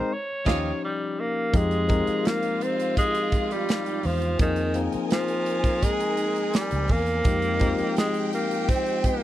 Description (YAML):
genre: lush 1970s-style soul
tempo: 84 BPM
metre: 4/4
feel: straight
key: F minor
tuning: A4 = 440 Hz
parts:
  - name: breathy tenor saxophone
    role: melody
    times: 0.0-9.2 s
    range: Eb3 to Db5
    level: -26 LUFS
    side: equal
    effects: none
  - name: tine electric piano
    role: accompaniment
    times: 0.0-9.2 s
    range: F3 to Bb4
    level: -29 LUFS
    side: left 4 dB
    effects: none
  - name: rich studio violin section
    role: second line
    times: 0.5-9.2 s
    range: F4 to Ab5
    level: -34 LUFS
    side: equal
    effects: none
  - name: electric guitar through a small old amp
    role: riff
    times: 0.5-0.7 s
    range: G4 to Eb5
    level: -33 LUFS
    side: right 5 dB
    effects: none
  - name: vintage muted fingered electric bass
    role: bass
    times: 0.5-7.8 s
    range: Db2 to F2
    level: -27 LUFS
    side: right 1 dB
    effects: none
  - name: modern studio drum kit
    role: drums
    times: 0.5-9.2 s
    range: crash cymbal, hi-hat, kick drum, snare drum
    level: -25 LUFS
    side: right 1 dB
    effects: none
  - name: phased string machine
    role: sustained chords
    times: 1.5-9.2 s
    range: Ab3 to Ab5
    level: -36 LUFS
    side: right 1 dB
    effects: ensemble chorus, phaser
room: studio reverb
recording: dry, close 1970s-style studio recording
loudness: -22 LUFS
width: side -13 dB against mid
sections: 0.0-1.5 A section; 1.5-9.2 B section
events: band accent 0.0-1.5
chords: 0.1 Eb9; 1.5 Fm9; 4.4 Bb9sus4; 7.3 Fm9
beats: 0.11 0.82 | 1.54 2.25 2.97 3.68 | 4.40 5.11 5.83 6.54 | 7.26 7.97 8.68